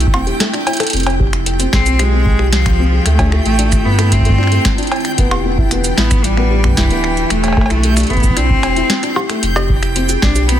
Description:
IDM; 113 BPM; 4/4; straight; C major; A4 = 440 Hz
clear cello; melody; 0.0-10.6 s; E3 to D4; -20 LUFS; equal; vintage 12-bit sampler grit, ping-pong delay
icy glass pad; sustained chords; 0.0-10.6 s; D3 to G4; -22 LUFS; equal; chorus, built-in reverb, vintage 12-bit sampler grit, sidechain pumping
warm sub bass; bass; 0.0-10.6 s; D1 to G2; -16 LUFS; equal
electro analog drum machine; drums; 0.0-10.6 s; cabasa, cowbell, finger snaps, hi-hat, snare drum; -19 LUFS; equal
backwards swelling texture; texture; 0.0-10.6 s; G5; -26 LUFS; right 2 dB; built-in reverb, sidechain pumping
felt-muted upright piano; arpeggios; 0.1-10.6 s; A3 to A4; -22 LUFS; left 2 dB; vintage 12-bit sampler grit, digital delay
electronic kick drum; drums; 0.1-10.3 s; -16 LUFS; equal
light reverb, digital ambience; dense, heavily limited modern master; -11 LUFS; side -11 dB against mid
0.0-10.6 A section
kick drops out 0.4-0.9; drum fill 0.7
0.0 C6/E; 0.9 Fmadd9; 3.1 Dm9; 5.2 Em7; 7.3 C6/E; 9.4 Fsus2

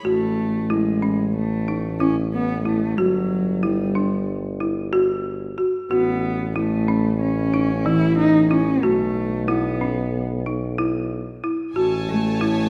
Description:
contemporary instrumental, chamber music in an uneven meter; 184 BPM (eighths); 9/8; straight; A lydian; A4 = 439 Hz
folk marimba with medium hard mallets; arpeggios; 0.0-12.7 s; E3 to F#4; -26 LUFS; equal
warm tuba; bass; 0.0-12.7 s; G1 to B1; -28 LUFS; equal
dark cello; melody; 0.1-12.7 s; F#3 to E4; -24 LUFS; equal
bright symphonic string section; sustained chords; 11.8-12.7 s; C#5 to A5; -34 LUFS; equal
moderate scoring stage reverb, RT60 1.8 s; -21 LUFS; mono
0.1-12.7 A section
0.1 Amaj7; 3.0 G5; 5.9 A; 8.8 B7sus4; 11.8 Amaj7

